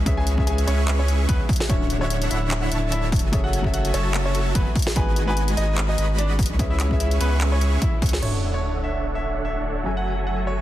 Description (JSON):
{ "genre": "future bass", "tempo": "147 BPM", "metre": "4/4", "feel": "swing 55% on 16ths, half-time", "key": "D lydian", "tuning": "A4 = 439 Hz", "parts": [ { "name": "felt-muted upright piano", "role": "accompaniment", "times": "0.0-10.6 s", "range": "C#3 to G#5", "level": "-31 LUFS", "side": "left 3 dB", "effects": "sidechain pumping, tape echo" }, { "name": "shimmering ambient pad", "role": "sustained chords", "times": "0.0-10.6 s", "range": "C#3 to C#5", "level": "-36 LUFS", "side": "right 1 dB", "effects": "none" }, { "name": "supersaw chords", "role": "riff", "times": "0.0-10.6 s", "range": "D3 to C#6", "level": "-29 LUFS", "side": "right 1 dB", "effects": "sidechain pumping, low-pass filter" }, { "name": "saturated sub bass", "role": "bass", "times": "0.0-10.6 s", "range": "D1 to C#2", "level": "-23 LUFS", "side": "equal", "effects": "sidechain pumping" }, { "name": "electronic kick drum", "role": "drums", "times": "0.1-8.1 s", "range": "none", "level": "-22 LUFS", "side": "equal", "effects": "overdrive, small room reverb" }, { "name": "trap drum kit", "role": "drums", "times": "0.1-8.3 s", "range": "crash cymbal, handclaps, hi-hat, snare drum", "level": "-29 LUFS", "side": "equal", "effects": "small room reverb" }, { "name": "bright concert grand piano", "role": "melody", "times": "0.2-10.6 s", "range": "B3 to G#5", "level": "-30 LUFS", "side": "right 1 dB", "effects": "sidechain pumping, tape echo" }, { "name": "sub drop", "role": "sound effects", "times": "8.2-9.9 s", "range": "none", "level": "-28 LUFS", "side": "equal", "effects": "none" } ], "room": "digital ambience", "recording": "dense, heavily limited modern master", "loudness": "-20 LUFS", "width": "side -14 dB against mid", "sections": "0.0-8.2 A section; 8.2-10.6 B section", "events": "drop 0.0-8.2; impact 8.2-9.9; filter sweep on supersaw synth 8.2-10.6", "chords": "0.1 C#m7; 1.7 Dmaj7; 3.3 F#m7; 5.0 G#m7; 6.6 C#m7; 8.2 Dmaj7; 9.9 F#m7", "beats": "| 0.06 0.47 0.88 1.29 | 1.70 2.10 2.51 2.92 | 3.33 3.73 4.14 4.55 | 4.96 5.37 5.78 6.18 | 6.59 7.00 7.41 7.82 | 8.22 8.63 9.04 9.45 | 9.86 10.27" }